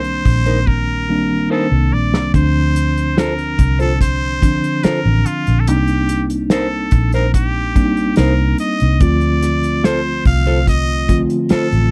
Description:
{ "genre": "lush 1970s-style soul", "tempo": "72 BPM", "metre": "4/4", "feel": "straight", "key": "unclear", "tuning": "A4 = 440 Hz", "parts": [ { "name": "trumpet with straight mute", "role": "melody", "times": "0.0-11.9 s", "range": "F4 to F5", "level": "-24 LUFS", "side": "equal", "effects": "none" }, { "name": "mellow tine electric piano", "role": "accompaniment", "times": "0.0-11.9 s", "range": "D3 to F4", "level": "-21 LUFS", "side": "equal", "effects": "none" }, { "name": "vintage muted fingered electric bass", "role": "bass", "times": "0.0-11.9 s", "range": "A1 to D2", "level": "-20 LUFS", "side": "equal", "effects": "none" }, { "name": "warm soul drum kit", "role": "drums", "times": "0.0-11.9 s", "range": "hi-hat, kick drum, snare drum", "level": "-18 LUFS", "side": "equal", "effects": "none" }, { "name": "electric guitar through a small old amp", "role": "riff", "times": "0.5-11.7 s", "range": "Eb4 to C5", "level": "-23 LUFS", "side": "equal", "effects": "none" } ], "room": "small room ambience", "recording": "dry, close 1970s-style studio recording", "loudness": "-16 LUFS", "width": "mono", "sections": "0.0-2.3 A section; 2.3-11.9 A section", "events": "drum fill 0.7-2.3", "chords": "0.0 Cm7; 2.3 Dm7; 5.7 Cm7; 9.0 Dm7" }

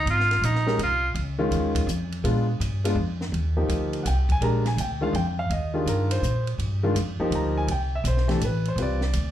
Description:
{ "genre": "modal jazz", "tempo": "165 BPM", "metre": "3/4", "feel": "swing 65% on 8ths", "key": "Eb major from 3.3 s", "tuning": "A4 = 439 Hz", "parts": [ { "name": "clear tenor saxophone", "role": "melody", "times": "0.0-1.1 s", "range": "Eb4 to F4", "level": "-23 LUFS", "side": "right 1 dB", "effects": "slapback echo" }, { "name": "upright bass", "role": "bass", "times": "0.0-9.3 s", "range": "Ab1 to Bb2", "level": "-25 LUFS", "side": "equal", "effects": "none" }, { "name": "compact cocktail drum kit", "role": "drums", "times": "0.1-9.2 s", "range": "hi-hat, kick drum, ride cymbal, snare drum", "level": "-34 LUFS", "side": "right 1 dB", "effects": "none" }, { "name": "clear concert grand piano", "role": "accompaniment", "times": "0.7-9.3 s", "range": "Eb3 to Bb5", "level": "-26 LUFS", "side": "left 1 dB", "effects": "slapback echo" } ], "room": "light reverb", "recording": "live gig heard through the venue's PA, club reverb", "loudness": "-22 LUFS", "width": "side -11 dB against mid", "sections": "0.0-3.3 A section; 3.3-9.3 B section", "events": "none", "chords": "0.0 Dbmaj9; 2.2 Bb7b9; 3.3 Ebmaj9; 7.7 Fmaj9" }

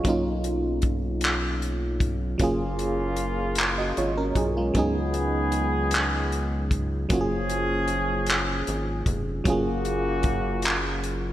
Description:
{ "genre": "slow six-eight R&B", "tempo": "51 BPM (dotted quarters)", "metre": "6/8", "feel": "straight", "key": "F# major", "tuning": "A4 = 439 Hz", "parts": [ { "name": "FM electric piano", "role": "accompaniment", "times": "0.0-11.3 s", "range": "F#3 to D#5", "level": "-27 LUFS", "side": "right 2 dB", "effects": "chorus" }, { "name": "warm soul drum kit", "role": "drums", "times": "0.0-11.2 s", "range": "handclaps, hi-hat, kick drum", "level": "-27 LUFS", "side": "equal", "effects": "gated reverb" }, { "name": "rubbery square bass", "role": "bass", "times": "0.1-11.3 s", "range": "E#1 to C#2", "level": "-29 LUFS", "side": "equal", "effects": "none" }, { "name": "warm horn section", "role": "stabs", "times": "2.4-11.3 s", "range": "C#3 to G#4", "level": "-30 LUFS", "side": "left 1 dB", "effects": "none" } ], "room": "moderate lush hall reverb, RT60 2.5 s", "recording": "bright 1980s-style digital production", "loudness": "-23 LUFS", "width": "side -13 dB against mid", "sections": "0.0-11.3 A section", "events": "none", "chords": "0.0 Bmaj9#11; 2.4 F#maj9; 4.8 C#9sus4; 7.1 F#maj9; 9.5 F#maj7" }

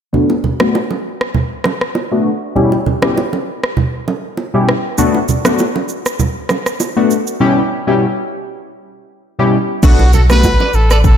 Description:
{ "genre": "afrobeats", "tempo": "99 BPM", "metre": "4/4", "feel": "swing 55% on 16ths", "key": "B minor", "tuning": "A4 = 440 Hz", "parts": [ { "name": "warm analog keys", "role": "accompaniment", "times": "0.1-10.5 s", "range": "B2 to G4", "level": "-15 LUFS", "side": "left 2 dB", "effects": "chorus, low-pass filter" }, { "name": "congas and bongos", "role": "percussion", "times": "0.1-11.2 s", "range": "none", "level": "-19 LUFS", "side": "right 4 dB", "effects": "none" }, { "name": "afro-pop drum kit", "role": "drums", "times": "0.6-11.2 s", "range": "crash cymbal, kick drum, rim click, shaker", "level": "-17 LUFS", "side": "equal", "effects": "none" }, { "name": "breathy trumpet", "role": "melody", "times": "9.8-11.2 s", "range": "F#4 to B4", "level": "-17 LUFS", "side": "left 1 dB", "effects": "analog delay" }, { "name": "sub bass with octave", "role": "bass", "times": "9.8-11.1 s", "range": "A1 to B1", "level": "-11 LUFS", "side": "equal", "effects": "none" }, { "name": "electric guitar at the edge of break-up", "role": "riff", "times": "10.1-11.0 s", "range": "F#4 to D5", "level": "-22 LUFS", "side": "right 8 dB", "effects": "ensemble chorus, analog delay" } ], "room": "moderate lush hall reverb, RT60 2.2 s", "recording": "dreamy mix soaked in reverb", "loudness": "-12 LUFS", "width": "side -8 dB against mid", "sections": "0.1-9.8 A section; 9.8-11.2 B section", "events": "filter sweep on synth keys 0.1-9.8", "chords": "0.1 Bm7; 2.6 C#dim/B; 5.0 Bm7; 7.4 C#dim/B; 9.8 Bm7" }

